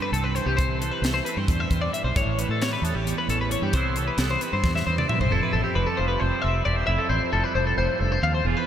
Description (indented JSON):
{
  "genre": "math rock and midwest emo",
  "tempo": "266 BPM (eighths)",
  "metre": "7/8",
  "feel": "straight",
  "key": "unclear",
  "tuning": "A4 = 440 Hz",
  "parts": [
    { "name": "twangy electric guitar", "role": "accompaniment", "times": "0.0-8.7 s", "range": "E2 to G4", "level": "-30 LUFS", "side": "right 8 dB", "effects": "lush chorus" },
    { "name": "twelve-string electric guitar", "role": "arpeggios", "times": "0.0-8.7 s", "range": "G4 to F5", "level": "-25 LUFS", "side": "left 3 dB", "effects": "lush chorus, tape echo" },
    { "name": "fingered electric bass", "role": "bass", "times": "0.1-8.5 s", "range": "E1 to A2", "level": "-26 LUFS", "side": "equal", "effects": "none" },
    { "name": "crisp fusion drum kit", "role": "drums", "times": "0.1-5.3 s", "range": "hi-hat, kick drum, snare drum, toms", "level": "-29 LUFS", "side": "equal", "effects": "none" }
  ],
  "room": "moderate huge ambient reverb, RT60 7.5 s",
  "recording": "dreamy mix soaked in reverb",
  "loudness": "-21 LUFS",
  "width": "side -10 dB against mid",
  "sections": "0.0-5.3 A section; 5.3-8.7 B section",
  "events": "drum fill 4.6-5.3",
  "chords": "0.0 C6; 2.2 A7; 3.7 Cmaj7; 5.3 Fmaj9"
}